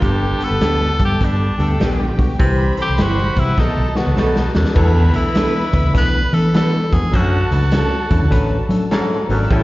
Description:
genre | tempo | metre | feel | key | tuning
uptempo 1960s-style soul | 101 BPM | 4/4 | swing 64% on 8ths | E mixolydian from 4.8 s | A4 = 440 Hz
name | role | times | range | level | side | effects
edgy tenor saxophone | melody | 0.0-8.9 s | B3 to B4 | -23 LUFS | equal | slapback echo
warm symphonic violin section | second line | 0.0-9.6 s | G#3 to B5 | -28 LUFS | equal | slapback echo
barky tine electric piano | accompaniment | 0.0-9.6 s | D3 to B4 | -23 LUFS | left 2 dB | slapback echo
warm baritone saxophone | riff | 0.0-9.6 s | D2 to C3 | -24 LUFS | right 1 dB | slapback echo
vintage muted fingered electric bass | bass | 0.0-9.6 s | G1 to F#3 | -17 LUFS | equal | none
raw garage drum kit | drums | 0.0-9.6 s | crash cymbal, hi-hat, kick drum, snare drum | -20 LUFS | equal | none
warm horn section | second line | 0.4-4.5 s | F#3 to C5 | -29 LUFS | equal | slapback echo
semi-hollow electric guitar | stabs | 0.6-9.1 s | C#4 to C5 | -27 LUFS | right 5 dB | phaser, slapback echo
room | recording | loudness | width
small room ambience | live gig heard through the venue's PA, recital hall reverb, nothing above 7.5 kHz | -14 LUFS | side -18 dB against mid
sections
0.0-4.8 A section; 4.8-9.6 B section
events
tenor saxophone solo 0.0-4.8; drum fill 3.6-4.8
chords
0.0 G; 2.4 C; 3.6 B7; 4.8 E7sus4; 7.1 Dmaj7

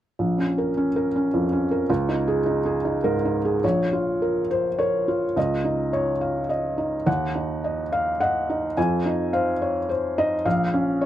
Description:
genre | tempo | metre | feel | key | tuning
classical | 106 BPM | 3/4 | rubato | Bb minor | A4 = 440 Hz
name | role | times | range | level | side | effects
felt-muted upright piano | accompaniment | 0.2-11.1 s | Bb1 to Ab5 | -21 LUFS | equal | none
room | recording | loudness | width
light reverb | dry, close 1970s-style studio recording | -21 LUFS | side -12 dB against mid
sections
0.2-3.6 A section; 3.6-11.1 B section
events
none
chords
0.2 Bbm; 1.9 Dbsus2; 3.6 Bbm; 5.4 Dbadd9; 7.1 Ebm; 8.8 Fm7; 10.5 Bbm

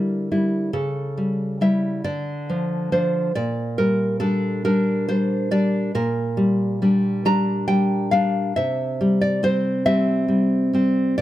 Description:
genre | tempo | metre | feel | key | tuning
romantic piece for solo classical guitar | 46 BPM (dotted quarters) | 6/8 | rubato | unclear | A4 = 440 Hz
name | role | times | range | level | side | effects
nylon-string guitar | solo | 0.0-11.2 s | Bb2 to Bb5 | -19 LUFS | equal | none
room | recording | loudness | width
light reverb | close, detailed microphones | -19 LUFS | side -14 dB against mid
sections
0.0-11.2 A section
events
none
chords
0.0 Em7b5/D; 0.7 A7/C#; 2.1 Dm; 3.4 Gm/Bb; 8.6 C

